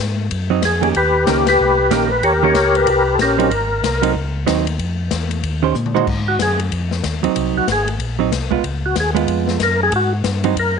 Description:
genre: soul jazz organ trio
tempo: 187 BPM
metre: 4/4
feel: swing 62% on 8ths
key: unclear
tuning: A4 = 440 Hz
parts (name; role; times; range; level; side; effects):
- mellow tonewheel organ; bass; 0.0-10.8 s; Ab1 to Bb2; -21 LUFS; left 1 dB; chorus vibrato, slow rotary speaker
- swinging big-band drum kit; drums; 0.3-10.7 s; crash cymbal, hi-hat, kick drum, ride cymbal, snare drum, toms; -24 LUFS; left 8 dB; none
- hollow-body jazz guitar; accompaniment; 0.5-10.6 s; Eb3 to C5; -19 LUFS; right 13 dB; none
- overdriven tonewheel organ; melody; 0.7-4.1, 6.3-10.8 s; Db4 to Db5; -16 LUFS; left 2 dB; slow rotary speaker, chorus vibrato
room: moderate spring reverb, RT60 1.2 s, small room ambience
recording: 1960s-style stereo with parts hard left and right, nothing above 10.4 kHz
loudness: -15 LUFS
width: side -6 dB against mid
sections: 0.0-6.1 A section; 6.1-10.8 B section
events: band accent 1.4; drum fill 5.8-6.1; tonewheel organ solo 6.1-10.8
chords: 0.0 Ab7(no3); 0.9 Eb7; 3.5 Ab7; 4.8 N.C.; 5.4 Eb6; 6.1 Ab7; 8.6 Db7; 9.9 Ab7(no3)

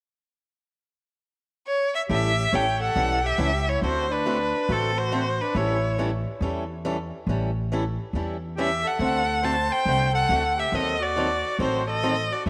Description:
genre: acoustic string swing (jazz manouche)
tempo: 139 BPM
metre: 4/4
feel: swing 63% on 8ths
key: unclear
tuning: A4 = 442 Hz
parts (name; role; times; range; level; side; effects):
- rich violin; melody; 1.7-6.0, 8.6-12.5 s; A4 to A5; -27 LUFS; equal; none
- accordion; second line; 2.1-12.5 s; C4 to C#5; -33 LUFS; equal; none
- picked swing-style acoustic guitar; accompaniment; 2.1-12.5 s; D3 to A4; -32 LUFS; equal; none
- upright bass; bass; 2.1-12.5 s; A1 to E2; -30 LUFS; equal; none
room: moderate plate reverb, RT60 3.1 s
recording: none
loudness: -25 LUFS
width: mono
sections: 0.4-2.1 A section; 2.1-12.5 B section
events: none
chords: 0.4 N.C.; 2.1 A7; 3.8 D7; 5.5 A7; 9.0 D7; 10.7 D#dim7

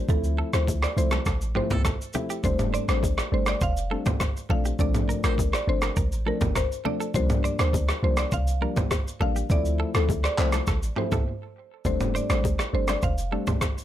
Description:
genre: afrobeats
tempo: 102 BPM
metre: 4/4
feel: straight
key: F major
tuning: A4 = 440 Hz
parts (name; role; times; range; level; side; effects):
- direct-recorded clean electric guitar; riff; 0.0-13.7 s; G4 to D5; -35 LUFS; right 6 dB; wide subtle chorus, tape echo
- mallet-like synth pluck; melody; 0.1-13.5 s; A4 to F5; -32 LUFS; equal; chorus, plate reverb
- soft electric-piano-like synth keys; accompaniment; 0.1-13.5 s; F3 to E4; -31 LUFS; left 3 dB; chorus, plate reverb
- clean 808-style bass; bass; 0.1-13.4 s; F1 to D2; -26 LUFS; equal; none
- boom bap sampler-style drum kit; drums; 0.1-13.8 s; handclaps, kick drum, rim click, shaker, toms; -27 LUFS; equal; none
- congas and bongos; percussion; 0.1-13.8 s; none; -35 LUFS; left 4 dB; none
room: little or no reverb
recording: none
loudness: -23 LUFS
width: side -12 dB against mid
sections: 0.0-11.9 A section; 11.9-13.8 B section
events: break 11.3-11.9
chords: 0.1 Dm7; 2.4 F6; 4.5 Bbmaj7; 7.1 C7sus4; 9.5 Dm7; 11.9 F6

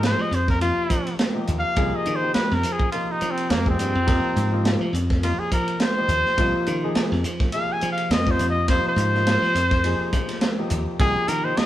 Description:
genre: electric jazz fusion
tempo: 104 BPM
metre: 4/4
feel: swing 56% on 16ths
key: F minor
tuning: A4 = 436 Hz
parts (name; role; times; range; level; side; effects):
- clear trumpet; melody; 0.0-11.7 s; Bb3 to Ab5; -24 LUFS; equal; none
- warm baby grand piano; accompaniment; 0.0-11.7 s; C3 to Bb4; -28 LUFS; left 1 dB; none
- glassy slap bass; bass; 0.0-11.6 s; C2 to F3; -25 LUFS; equal; none
- tight funk drum kit; drums; 0.0-11.7 s; hi-hat, kick drum, ride cymbal, snare drum; -24 LUFS; right 1 dB; none
room: moderate stone room reverb, RT60 1.2 s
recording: band playing live in one room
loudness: -19 LUFS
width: side -13 dB against mid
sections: 0.0-11.7 A section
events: trumpet solo 0.0-11.7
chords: 0.0 Fm9

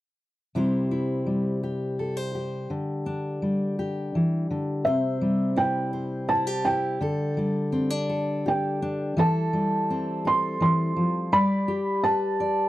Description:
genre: acoustic folk duo or small band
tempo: 84 BPM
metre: 3/4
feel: straight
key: C major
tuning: A4 = 440 Hz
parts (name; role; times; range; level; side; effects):
- fingerpicked steel-string acoustic guitar; accompaniment; 0.5-12.7 s; C3 to D5; -25 LUFS; left 1 dB; none
- felt-muted upright piano; melody; 4.8-12.7 s; E5 to C6; -25 LUFS; right 2 dB; none
room: light reverb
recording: dry, close 1970s-style studio recording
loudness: -23 LUFS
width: side -15 dB against mid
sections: 0.6-4.9 A section; 4.9-12.7 B section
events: none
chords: 0.6 C; 2.7 G5/D; 4.9 C; 7.0 Gsus2/D; 9.2 C6/E; 11.3 Gadd9

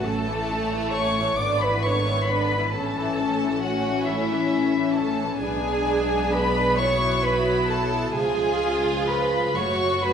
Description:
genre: classical, slow romantic movement for string orchestra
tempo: 44 BPM (dotted quarters)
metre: 6/8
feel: rubato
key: unclear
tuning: A4 = 441 Hz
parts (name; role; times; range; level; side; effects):
- dark chamber violin section; melody; 0.0-10.1 s; E5 to D6; -28 LUFS; left 4 dB; none
- warm studio violin section; second line; 0.0-10.1 s; A3 to F#4; -27 LUFS; left 2 dB; none
- warm studio viola section; accompaniment; 0.0-10.1 s; D3 to E4; -28 LUFS; right 2 dB; none
- dark studio cello section; bass; 0.0-10.1 s; E4 to D5; -26 LUFS; right 1 dB; none
- rich studio double bass section; bass; 0.0-10.1 s; F#1 to C#2; -30 LUFS; right 1 dB; none
room: wet recital hall reverb, RT60 1.6 s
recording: recorded in a church or concert hall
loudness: -21 LUFS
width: side -7 dB against mid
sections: 0.0-10.1 A section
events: none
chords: 0.0 A; 1.4 E7/G#; 2.7 A; 5.4 G#dim/B; 8.2 C#7; 9.6 F#m

